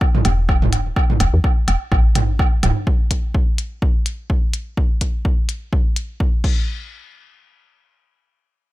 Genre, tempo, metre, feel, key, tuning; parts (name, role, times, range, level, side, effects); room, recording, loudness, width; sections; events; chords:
minimal techno; 126 BPM; 4/4; swing 57% on 16ths; E minor; A4 = 440 Hz
electronic kick drum; drums; 0.0-6.5 s; -17 LUFS; equal; studio ambience
electronic woodblock and toms; percussion; 0.0-2.7 s; -21 LUFS; right 2 dB; studio ambience, tape echo
woody FM bass; bass; 0.2-2.7 s; D1 to E2; -18 LUFS; equal; sidechain pumping
minimal click drum kit; drums; 0.2-6.5 s; crash cymbal, hi-hat; -27 LUFS; left 3 dB; studio ambience
little or no reverb; -16 LUFS; side -17 dB against mid
0.0-6.7 A section; 6.7-8.7 B section